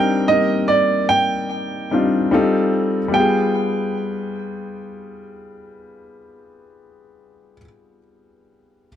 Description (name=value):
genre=R&B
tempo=74 BPM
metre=4/4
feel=swing 54% on 16ths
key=unclear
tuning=A4 = 441 Hz
part: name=warm baby grand piano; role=melody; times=0.0-7.6 s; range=D5 to G5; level=-19 LUFS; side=right 4 dB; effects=digital delay
part: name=dark grand piano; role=accompaniment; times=0.0-8.9 s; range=G3 to Bb4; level=-19 LUFS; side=left 2 dB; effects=none
room=light reverb, studio reverb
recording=dark, warm production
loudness=-16 LUFS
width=side -10 dB against mid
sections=0.0-3.1 A section; 3.1-6.4 B section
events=none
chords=0.0 Cm9; 2.3 F9; 3.1 G7b9